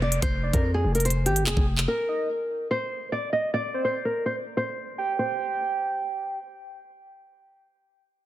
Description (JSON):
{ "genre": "hip hop, drill", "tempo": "145 BPM", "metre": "4/4", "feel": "half-time", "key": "C minor", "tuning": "A4 = 438 Hz", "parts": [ { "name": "nylon-string guitar", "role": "melody", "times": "0.0-6.4 s", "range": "G4 to Eb5", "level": "-27 LUFS", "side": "equal", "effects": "low-pass filter, digital delay" }, { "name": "growling 808-style bass", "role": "bass", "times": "0.0-1.9 s", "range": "F1 to F2", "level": "-25 LUFS", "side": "equal", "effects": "none" }, { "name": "downlifter", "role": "sound effects", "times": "0.0-1.9 s", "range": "none", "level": "-43 LUFS", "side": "left 1 dB", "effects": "none" }, { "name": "drill drum kit", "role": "drums", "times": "0.1-1.9 s", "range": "handclaps, hi-hat, kick drum", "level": "-25 LUFS", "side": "equal", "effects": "none" }, { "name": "soft octave-layered synth lead", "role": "second line", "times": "0.4-6.4 s", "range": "C5 to G5", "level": "-30 LUFS", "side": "right 4 dB", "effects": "chorus, digital delay" } ], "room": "light reverb", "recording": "dense, heavily limited modern master", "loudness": "-24 LUFS", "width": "side -13 dB against mid", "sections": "0.0-5.2 A section; 5.2-8.3 B section", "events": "none", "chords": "0.0 F5; 1.9 N.C.; 5.2 C5", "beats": "| 0.22 0.64 1.05 1.47 | 1.88 2.29 2.71 3.12 | 3.53 3.95 4.36 4.78 | 5.19 5.60 6.02" }